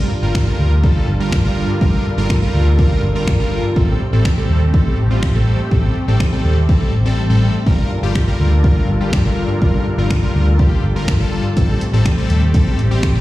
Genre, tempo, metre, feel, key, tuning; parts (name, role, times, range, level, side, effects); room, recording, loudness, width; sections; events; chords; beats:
dance-pop; 123 BPM; 4/4; straight; G minor; A4 = 440 Hz
big bright polysynth; accompaniment; 0.0-13.2 s; G3 to Bb4; -22 LUFS; left 1 dB; sidechain pumping, slapback echo
filtered supersaw swell; sustained chords; 0.0-13.2 s; G3 to Bb4; -25 LUFS; equal; sidechain pumping
vintage muted fingered electric bass; bass; 0.0-13.2 s; G1 to Eb2; -16 LUFS; equal; sidechain pumping
punchy analog drum machine; drums; 0.3-13.1 s; finger snaps, hi-hat, kick drum; -16 LUFS; equal
light reverb, digital ambience; live gig heard through the venue's PA, recital hall reverb; -13 LUFS; side -16 dB against mid
0.0-13.2 A section
silent gap 7.2-7.7
0.0 Gm7; 3.8 Am7b5; 7.7 Gm7; 11.6 Am7b5
0.35 0.84 1.32 | 1.81 2.30 2.79 3.27 | 3.76 4.25 4.74 5.23 | 5.71 6.20 6.69 7.18 | 7.67 8.15 8.64 9.13 | 9.62 10.10 10.59 11.08 | 11.57 12.05 12.54 13.03